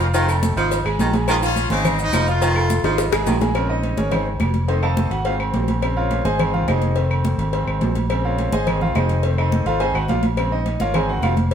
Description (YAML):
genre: latin, salsa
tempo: 211 BPM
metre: 4/4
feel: straight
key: unclear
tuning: A4 = 440 Hz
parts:
  - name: bright trumpet section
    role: melody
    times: 0.0-3.1 s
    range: Gb3 to F4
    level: -24 LUFS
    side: left 1 dB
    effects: none
  - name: bright concert grand piano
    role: accompaniment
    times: 0.0-11.5 s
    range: Db3 to F6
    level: -24 LUFS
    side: equal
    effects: none
  - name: fingered electric bass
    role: bass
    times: 0.0-11.5 s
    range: F1 to Bb1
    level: -22 LUFS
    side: equal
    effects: none
  - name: cowbell and bongos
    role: percussion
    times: 0.0-11.5 s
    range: none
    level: -28 LUFS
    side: left 5 dB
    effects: none
  - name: maracas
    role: percussion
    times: 0.0-3.5 s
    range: none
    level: -34 LUFS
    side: left 3 dB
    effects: none
  - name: clear baritone saxophone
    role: second line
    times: 0.1-3.4 s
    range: Db3 to F3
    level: -24 LUFS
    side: right 2 dB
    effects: none
  - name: agogo bells and timbales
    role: percussion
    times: 0.1-11.5 s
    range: none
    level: -29 LUFS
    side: right 6 dB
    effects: none
  - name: congas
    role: percussion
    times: 0.1-11.5 s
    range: none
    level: -25 LUFS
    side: right 1 dB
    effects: none
  - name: claves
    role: percussion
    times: 0.3-11.4 s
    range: none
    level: -35 LUFS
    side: left 6 dB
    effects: none
room: moderate stone room reverb, RT60 1.1 s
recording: band playing live in one room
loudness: -17 LUFS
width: side -8 dB against mid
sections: 0.0-3.6 A section; 3.6-11.5 B section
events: drum fill 2.8-3.6; grand piano solo 3.6-11.5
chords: 0.1 F7; 0.7 Ab5; 1.3 Bbm7; 1.8 Ab; 2.4 F7; 3.0 Ab5; 3.6 Bbm7; 4.1 Ab; 4.7 F7; 5.3 Ab; 5.8 Bbm7; 6.4 Ab; 7.0 F7; 7.5 Ab; 8.1 Bbm7; 8.7 Ab; 9.2 F7; 9.8 Ab; 10.4 Bbm7; 10.9 Ab